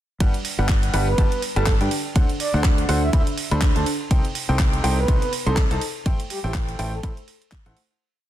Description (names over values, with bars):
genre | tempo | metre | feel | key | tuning
piano house | 123 BPM | 4/4 | swing 57% on 16ths | G major | A4 = 440 Hz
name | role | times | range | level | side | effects
bright upright piano | riff | 0.2-7.8 s | C3 to C6 | -26 LUFS | equal | sidechain pumping, digital delay
fingered electric bass | bass | 0.2-7.7 s | G1 to G2 | -24 LUFS | equal | tube saturation, sidechain pumping
electronic kick drum | drums | 0.2-7.6 s | none | -20 LUFS | equal | none
house drum kit | drums | 0.2-7.9 s | handclaps, hi-hat, ride cymbal | -29 LUFS | right 2 dB | soft clipping on snare
breathy flute-like synth lead | melody | 1.1-7.1 s | G4 to E5 | -28 LUFS | right 3 dB | chorus, digital delay
room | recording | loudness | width
digital ambience | dense, heavily limited modern master | -19 LUFS | side -12 dB against mid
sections
0.2-8.0 drop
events
drop 0.2-8.0; fade-out 5.4-8.0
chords
0.2 Gmaj7; 1.9 D7; 4.1 Cm6; 5.8 Am7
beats
| 0.20 0.69 1.18 1.67 | 2.16 2.64 3.13 3.62 | 4.11 4.59 5.08 5.57 | 6.06 6.55 7.03 7.52